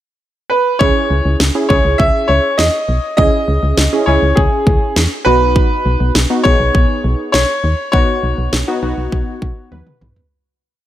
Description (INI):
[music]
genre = synth-pop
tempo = 101 BPM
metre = 4/4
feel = straight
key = C# minor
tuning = A4 = 440 Hz
[part]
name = clear concert grand piano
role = melody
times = 0.5-9.7 s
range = G#4 to E5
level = -16 LUFS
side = equal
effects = tape echo
[part]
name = warm analog keys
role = accompaniment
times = 0.8-10.3 s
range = B3 to B4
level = -19 LUFS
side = right 1 dB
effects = chorus
[part]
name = solid FM bass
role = bass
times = 0.8-10.1 s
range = B1 to E2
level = -16 LUFS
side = equal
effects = none
[part]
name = house drum kit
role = drums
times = 0.8-10.3 s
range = kick drum, snare drum, toms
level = -16 LUFS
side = equal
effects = none
[sound]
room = little or no reverb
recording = none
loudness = -12 LUFS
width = side -12 dB against mid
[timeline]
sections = 0.0-0.8 pickup bar; 0.8-10.3 verse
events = fade-out 7.9-10.3; synth keys fill 9.4-10.3; drum fill 9.7-10.3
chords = 0.0 N.C.; 0.8 C#m; 5.3 Badd9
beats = 0.21 | 0.81 1.40 1.99 2.59 | 3.18 3.78 4.37 4.96 | 5.56 6.15 6.75 7.34 | 7.93 8.53 9.12 9.72